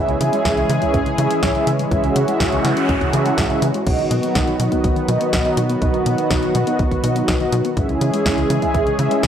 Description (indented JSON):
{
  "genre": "italo disco",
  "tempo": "123 BPM",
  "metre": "4/4",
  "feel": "straight",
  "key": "unclear",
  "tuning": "A4 = 440 Hz",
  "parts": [
    { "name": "lush unison pad", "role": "sustained chords", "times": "0.0-9.3 s", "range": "D#3 to G#4", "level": "-21 LUFS", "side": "equal", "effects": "chorus" },
    { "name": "soft round pluck", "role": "arpeggios", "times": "0.0-9.3 s", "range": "G#2 to B3", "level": "-27 LUFS", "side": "left 2 dB", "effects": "chorus, analog delay" },
    { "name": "mellow synth brass", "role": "stabs", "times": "0.0-9.3 s", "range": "B3 to E5", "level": "-21 LUFS", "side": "right 1 dB", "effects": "chorus, phaser, analog delay" },
    { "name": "tight sequencer bass", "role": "bass", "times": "0.0-9.3 s", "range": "B1 to C#3", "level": "-22 LUFS", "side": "equal", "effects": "tube saturation" },
    { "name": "house drum kit", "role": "drums", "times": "0.1-9.3 s", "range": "crash cymbal, hi-hat, snare drum", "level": "-26 LUFS", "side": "equal", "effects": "studio reverb" },
    { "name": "electronic kick drum", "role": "drums", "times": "0.5-9.3 s", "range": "none", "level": "-24 LUFS", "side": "equal", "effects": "studio reverb" },
    { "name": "noise sweep", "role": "sound effects", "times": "2.3-3.9 s", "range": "none", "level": "-28 LUFS", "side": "right 4 dB", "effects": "none" }
  ],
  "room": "light reverb, digital ambience",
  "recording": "dry, gritty hardware recording",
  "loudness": "-16 LUFS",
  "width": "side -9 dB against mid",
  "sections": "0.0-9.3 A section",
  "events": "noise sweep 2.3-3.9",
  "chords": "0.0 C#m; 3.9 B; 7.8 C#m"
}